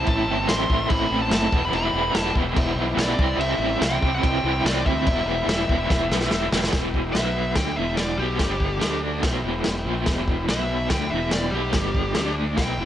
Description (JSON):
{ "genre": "garage rock duo or trio", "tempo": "144 BPM", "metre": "4/4", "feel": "straight", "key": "E minor", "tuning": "A4 = 441 Hz", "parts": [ { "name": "fuzz lead guitar", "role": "melody", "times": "0.0-12.9 s", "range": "G4 to C6", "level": "-27 LUFS", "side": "left 1 dB", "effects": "distortion, plate reverb" }, { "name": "crunchy overdriven guitar", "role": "riff", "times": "0.0-12.9 s", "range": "E2 to E4", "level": "-25 LUFS", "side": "equal", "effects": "tremolo" }, { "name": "fuzz fingered electric bass", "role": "bass", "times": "0.0-12.9 s", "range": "E1 to D2", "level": "-28 LUFS", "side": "equal", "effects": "overdrive" }, { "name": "overdriven combo organ", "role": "sustained chords", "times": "0.1-12.9 s", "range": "B3 to F#5", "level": "-35 LUFS", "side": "left 1 dB", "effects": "none" }, { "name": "crunchy breakbeat drum kit", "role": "drums", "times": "0.1-12.7 s", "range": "crash cymbal, kick drum, snare drum", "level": "-25 LUFS", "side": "equal", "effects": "none" } ], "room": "light reverb", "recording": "nothing above 10.8 kHz", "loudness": "-20 LUFS", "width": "side -11 dB against mid", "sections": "0.0-6.7 A section; 6.7-12.9 B section", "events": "drum fill 5.9-6.7; lead electric guitar solo 6.7-12.9", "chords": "0.1 Am; 1.5 Em; 3.2 C; 5.1 Em; 7.1 B5; 7.6 Em; 8.4 G5; 8.8 D5; 9.2 Em; 10.5 B5; 10.9 Em; 11.7 G5; 12.2 D5" }